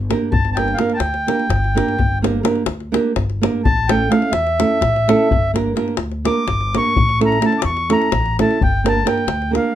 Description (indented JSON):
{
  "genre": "balkan folk, Balkan wedding band",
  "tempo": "254 BPM (eighths)",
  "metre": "7/8",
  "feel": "straight",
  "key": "G dorian sharp4",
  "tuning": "A4 = 442 Hz",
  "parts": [
    { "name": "upright bass", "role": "bass", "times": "0.0-9.6 s", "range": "G1 to E2", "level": "-22 LUFS", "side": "left 1 dB", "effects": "none" },
    { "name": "nylon-string guitar", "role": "accompaniment", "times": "0.1-9.7 s", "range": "A3 to Bb4", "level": "-18 LUFS", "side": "right 4 dB", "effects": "none" },
    { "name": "davul", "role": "percussion", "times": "0.1-9.6 s", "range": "none", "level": "-22 LUFS", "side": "left 4 dB", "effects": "none" },
    { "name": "mellow accordion", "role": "melody", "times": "0.3-9.8 s", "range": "E5 to D6", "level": "-19 LUFS", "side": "equal", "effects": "none" }
  ],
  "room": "moderate studio ambience, RT60 0.5 s",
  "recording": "none",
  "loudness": "-15 LUFS",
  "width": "side -11 dB against mid",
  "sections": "0.0-9.8 A section",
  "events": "accordion solo 0.0-9.8",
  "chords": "0.0 Gm; 3.7 A; 5.3 Gm; 7.0 A; 8.6 Gm"
}